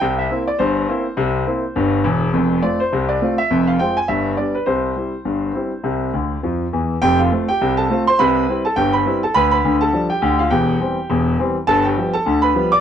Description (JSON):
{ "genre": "ragtime piano", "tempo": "103 BPM", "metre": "2/4", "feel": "swing 58% on 16ths", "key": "C major", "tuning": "A4 = 440 Hz", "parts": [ { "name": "clear concert grand piano", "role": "solo", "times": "0.0-12.8 s", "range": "E1 to D6", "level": "-16 LUFS", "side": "equal", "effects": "none" } ], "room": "light reverb", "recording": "worn, warbling old tape, cassette tape, warbly pitch drift, nothing above 10.8 kHz", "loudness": "-16 LUFS", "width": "side -9 dB against mid", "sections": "0.0-7.0 A section; 7.0-12.8 B section", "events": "grand piano fill 6.1-7.0", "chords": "0.0 C7; 2.3 F; 3.5 Fm; 4.1 G; 4.7 C; 7.0 F; 8.2 C; 9.3 G7/D; 10.5 C/E; 11.7 G7" }